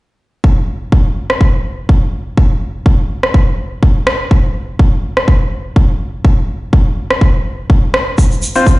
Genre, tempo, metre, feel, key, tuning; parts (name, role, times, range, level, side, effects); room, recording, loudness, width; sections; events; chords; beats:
bass house; 124 BPM; 4/4; swing 55% on 16ths; A4 = 440 Hz
electronic kick drum; drums; 0.4-8.8 s; -10 LUFS; equal
electronic rim click; drums; 1.3-8.0 s; -16 LUFS; equal
tube shaker; percussion; 8.2-8.8 s; -22 LUFS; right 2 dB
clear baby grand piano; stabs; 8.6 s; C4 to C5; -10 LUFS; left 2 dB; sidechain pumping
light reverb, studio ambience; played on a big sound system in a bare room, stone room reverb, nothing above 10.7 kHz; -11 LUFS; side -20 dB against mid
0.4-8.8 A section
0.4 F5
| 0.44 0.92 1.41 1.89 | 2.37 2.86 3.34 3.83 | 4.31 4.79 5.28 5.76 | 6.25 6.73 7.21 7.70 | 8.18 8.66